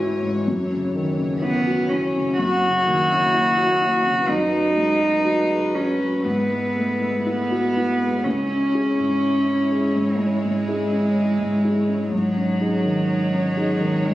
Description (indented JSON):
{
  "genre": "neoclassical piano and strings",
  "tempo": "62 BPM",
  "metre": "4/4",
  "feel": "rubato",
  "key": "C# minor",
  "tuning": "A4 = 438 Hz",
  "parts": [
    { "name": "warm cello", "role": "second line", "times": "0.0-14.1 s", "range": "F#3 to F#4", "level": "-20 LUFS", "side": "right 1 dB", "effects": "slapback echo" },
    { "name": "dark grand piano", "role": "accompaniment", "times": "0.0-14.1 s", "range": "C#2 to G#4", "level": "-23 LUFS", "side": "left 1 dB", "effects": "none" },
    { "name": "dark chamber string section", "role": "sustained chords", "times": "0.0-14.1 s", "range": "E3 to C#5", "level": "-30 LUFS", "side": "left 1 dB", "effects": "none" }
  ],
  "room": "light reverb",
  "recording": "recorded on a phone in the room, studio reverb",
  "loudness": "-18 LUFS",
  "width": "side -15 dB against mid",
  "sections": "0.0-8.2 A section; 8.2-14.1 B section",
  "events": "none",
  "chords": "0.5 F#m7; 2.4 F#7; 4.3 B7/F#; 6.2 E/G#; 8.2 C#m; 12.1 G#sus4"
}